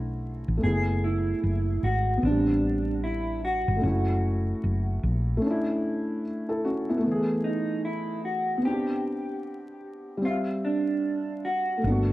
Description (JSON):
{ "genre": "lo-fi hip hop", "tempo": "75 BPM", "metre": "4/4", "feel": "swing 61% on 16ths", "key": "unclear", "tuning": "A4 = 440 Hz", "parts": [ { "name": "mellow electric guitar", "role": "melody", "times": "0.0-12.1 s", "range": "D4 to G#4", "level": "-29 LUFS", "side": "right 2 dB", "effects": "lush chorus, plate reverb" }, { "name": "felt-muted upright piano", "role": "accompaniment", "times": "0.0-12.1 s", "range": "E3 to F5", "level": "-28 LUFS", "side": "equal", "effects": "cassette tape, plate reverb" }, { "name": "woody fretless electric bass", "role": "bass", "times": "0.0-5.4, 11.8-12.1 s", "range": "F#1 to B1", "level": "-26 LUFS", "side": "equal", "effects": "none" } ], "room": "moderate small room reverb, RT60 0.6 s", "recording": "vinyl crackle", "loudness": "-24 LUFS", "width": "side -16 dB against mid", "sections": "0.0-12.1 A section", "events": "break 5.4-11.8", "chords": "0.0 Bm11; 0.6 F#m11; 2.2 Am11; 3.8 F#m7; 5.4 Aadd11; 7.0 Eadd11; 8.6 Gadd11/B; 10.2 Dm11" }